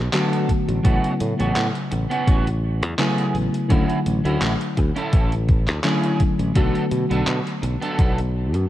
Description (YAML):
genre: vaporwave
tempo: 84 BPM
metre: 4/4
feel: swing 54% on 16ths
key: B minor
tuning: A4 = 445 Hz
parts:
  - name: mellow FM electric piano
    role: accompaniment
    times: 0.0-8.7 s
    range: C#3 to F#4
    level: -23 LUFS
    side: left 1 dB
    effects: analog chorus, analog delay
  - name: modern bright fingered electric bass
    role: bass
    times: 0.0-8.6 s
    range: A1 to B2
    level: -23 LUFS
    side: equal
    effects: none
  - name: electric guitar at the edge of break-up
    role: riff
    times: 0.1-8.6 s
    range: B3 to A4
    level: -27 LUFS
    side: right 3 dB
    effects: ensemble chorus, vintage 12-bit sampler grit, low-pass filter, analog delay
  - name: detuned 8-bit digital drum machine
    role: drums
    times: 0.1-8.7 s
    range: handclaps, hi-hat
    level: -29 LUFS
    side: equal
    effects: overdrive, gated reverb
  - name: electronic kick drum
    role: drums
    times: 0.5-8.1 s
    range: none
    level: -19 LUFS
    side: equal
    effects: overdrive
room: light reverb, digital ambience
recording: cassette tape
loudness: -18 LUFS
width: side -14 dB against mid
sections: 0.0-8.7 A section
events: none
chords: 0.0 Bm7; 0.8 A69; 3.7 Dmaj9; 6.6 Bm7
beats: 0.14 | 0.85 1.56 2.28 2.99 | 3.71 4.42 5.13 5.85 | 6.56 7.28 7.99